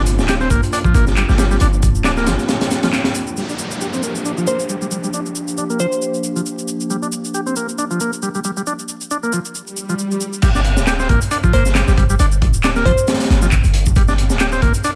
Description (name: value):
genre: breakbeat, breaks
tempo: 136 BPM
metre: 4/4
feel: swing 55% on 16ths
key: G minor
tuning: A4 = 440 Hz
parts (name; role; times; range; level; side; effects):
- warbly tape-like pad; sustained chords; 0.0-10.4 s; F3 to G4; -28 LUFS; equal; chorus, built-in reverb, vintage 12-bit sampler grit, sidechain pumping
- warm 808-style bass; bass; 0.0-2.4, 10.4-14.7 s; D1 to G1; -19 LUFS; equal; none
- crunchy breakbeat drum kit; drums; 0.1-3.3, 10.4-15.0 s; crash cymbal, hi-hat, kick drum, snare drum; -19 LUFS; equal; none
- electronic shaker and handclaps; drums; 0.1-14.9 s; none; -28 LUFS; equal; overdrive
- combo organ; riff; 0.3-14.9 s; F3 to G4; -24 LUFS; equal; vintage 12-bit sampler grit, low-pass filter, tape echo
- downlifter and swell; sound effects; 3.4-10.4 s; none; -29 LUFS; equal; none
- glassy wavetable pluck; melody; 4.5-6.1, 11.5-13.2 s; C5; -24 LUFS; equal; chorus, small speaker sound, tape echo
room: studio ambience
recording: vinyl crackle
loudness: -17 LUFS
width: mono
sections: 0.0-3.4 A section; 3.4-10.4 B section; 10.4-15.0 C section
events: break 2.5-3.4; band accent 2.9; swell 9.7-10.4; drop 10.4-15.0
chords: 0.0 Gm7; 10.4 Gm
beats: 0.28 0.73 1.17 | 1.61 2.05 2.49 2.93 | 3.37 3.81 4.25 4.70 | 5.14 5.58 6.02 6.46 | 6.90 7.34 7.79 8.23 | 8.67 9.11 9.55 9.99 | 10.43 10.87 11.31 11.76 | 12.20 12.64 13.08 13.52 | 13.96 14.40 14.84